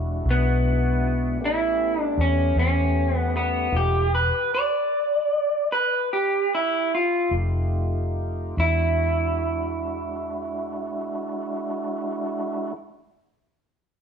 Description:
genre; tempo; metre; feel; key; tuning
slow blues; 47-52 BPM (dotted quarters); 12/8; straight; E mixolydian; A4 = 440 Hz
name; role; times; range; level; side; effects
tonewheel organ; sustained chords; 0.0-12.7 s; G#3 to G4; -30 LUFS; right 1 dB; slow rotary speaker, overdrive
vintage muted fingered electric bass; bass; 0.0-12.7 s; E1 to E2; -24 LUFS; left 1 dB; none
electric guitar through a small old amp; melody; 0.3-12.8 s; B3 to D5; -23 LUFS; right 1 dB; spring reverb
room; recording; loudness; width
moderate stone room reverb, RT60 1.0 s; band playing live in one room; -21 LUFS; side -7 dB against mid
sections
0.0-8.6 A section; 8.6-13.7 B section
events
slowing down 2.2-8.6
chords
0.0 E9; 1.4 A9; 3.7 Em7; 7.3 F9; 8.6 E9

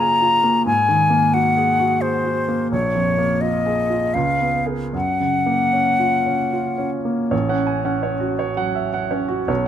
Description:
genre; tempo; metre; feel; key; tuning
classical, impressionist duo for flute and grand piano; 74-90 BPM; 3/4; rubato; Gb lydian; A4 = 441 Hz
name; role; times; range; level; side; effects
concert flute; melody; 0.0-6.9 s; C5 to Bb5; -18 LUFS; left 3 dB; none
clear baby grand piano; accompaniment; 0.0-9.7 s; A1 to G#5; -20 LUFS; right 2 dB; none
room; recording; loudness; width
light reverb; close, detailed microphones; -17 LUFS; side -9 dB against mid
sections
0.0-7.3 A section; 7.3-9.7 B section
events
none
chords
0.0 Gbmaj9; 0.7 Ab9; 2.7 Bbm7; 4.1 Db6; 4.9 Gbmaj7; 7.3 A6

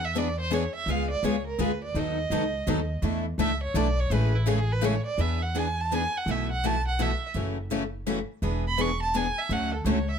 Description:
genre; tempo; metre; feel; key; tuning
acoustic string swing (jazz manouche); 167 BPM; 3/4; swing 63% on 8ths; unclear; A4 = 441 Hz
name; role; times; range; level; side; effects
warm violin; melody; 0.0-10.2 s; E4 to C#6; -30 LUFS; right 3 dB; plate reverb
upright bass; bass; 0.0-10.2 s; E1 to E2; -29 LUFS; equal; none
picked steel-string acoustic guitar; accompaniment; 0.1-10.0 s; B2 to A4; -30 LUFS; left 8 dB; none
picked steel-string acoustic guitar; accompaniment; 0.2-10.0 s; B2 to B4; -32 LUFS; right 8 dB; none
room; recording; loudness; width
light reverb; close, detailed microphones; -24 LUFS; side -7 dB against mid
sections
0.0-5.2 A section; 5.2-10.2 A section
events
violin solo 0.0-10.2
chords
0.0 E7; 0.9 C#7; 2.0 B7; 3.0 E7sus4; 4.1 Amaj7; 5.2 E7; 6.3 B7sus4; 7.3 F#m7; 8.4 E7; 9.5 Dmaj7

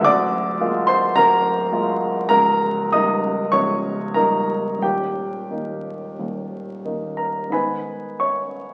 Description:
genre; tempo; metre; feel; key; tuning
classical, romantic character piece for solo piano; 87-109 BPM; 4/4; rubato; unclear; A4 = 440 Hz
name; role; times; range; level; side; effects
warm grand piano; solo; 0.0-8.7 s; C#1 to D#6; -21 LUFS; equal; none
room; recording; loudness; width
wet large studio reverb, RT60 1.2 s; very old 78 rpm record, vinyl crackle; -21 LUFS; mono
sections
0.0-7.5 A section; 7.5-8.7 B section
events
none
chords
0.0 A#7/D; 2.3 D#7/C#; 4.8 D#; 7.5 G#m

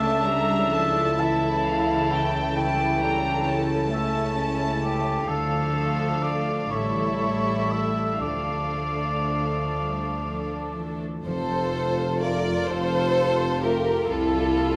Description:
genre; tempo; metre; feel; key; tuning
classical, slow romantic movement for symphony orchestra; 38-44 BPM (dotted quarters); 6/8; rubato; D minor, F major from 11.3 s; A4 = 440 Hz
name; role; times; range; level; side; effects
warm chamber violin section; melody; 0.0-14.8 s; F4 to Bb5; -35 LUFS; equal; none
mellow cor anglais; second line; 0.0-10.7 s; G4 to A5; -29 LUFS; equal; none
warm chamber violin section; second line; 0.0-14.8 s; C#4 to D5; -32 LUFS; equal; none
dark chamber viola section; accompaniment; 0.0-14.8 s; E3 to F4; -32 LUFS; equal; none
concert harp; arpeggios; 0.0-14.8 s; A2 to A5; -34 LUFS; equal; none
warm chamber cello section; bass; 0.0-14.8 s; F2 to G3; -34 LUFS; equal; none
warm chamber double bass section; bass; 0.0-14.8 s; F1 to D2; -36 LUFS; equal; none
warm tuba; bass; 11.3-14.8 s; F1 to C2; -32 LUFS; equal; none
mellow French horn section; sustained chords; 12.2-13.8 s; A3 to F4; -36 LUFS; equal; none
room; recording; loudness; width
moderate scoring stage reverb, RT60 1.7 s; none; -24 LUFS; mono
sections
0.0-11.3 A section; 11.3-14.8 B section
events
none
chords
0.0 A/C#; 2.6 A7/C#; 5.3 Dm; 6.7 A7; 8.2 Dm; 11.3 F; 14.1 C7

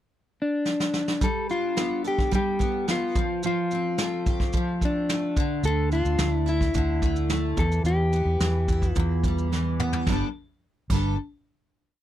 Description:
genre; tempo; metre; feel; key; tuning
acoustic pop; 108 BPM; 4/4; straight; G mixolydian; A4 = 440 Hz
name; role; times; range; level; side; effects
mellow electric guitar; melody; 0.4-9.5 s; D4 to A4; -27 LUFS; left 2 dB; none
vintage brush drum kit; drums; 0.7-11.0 s; crash cymbal, kick drum, shaker, snare drum, toms; -27 LUFS; equal; none
picked steel-string acoustic guitar; accompaniment; 1.2-11.1 s; E2 to A4; -29 LUFS; right 1 dB; double-tracked left and right
vintage muted fingered electric bass; bass; 5.6-11.2 s; G1 to E2; -25 LUFS; equal; none
room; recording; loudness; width
light reverb; none; -22 LUFS; side -12 dB against mid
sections
0.0-1.2 pickup bar; 1.2-10.1 verse; 10.1-12.0 final chord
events
drum fill 0.7-1.2, 9.5-10.1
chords
0.0 N.C.; 1.2 Gadd9; 3.2 Fadd9; 5.4 Dsus2; 7.6 Em; 10.1 Gadd9

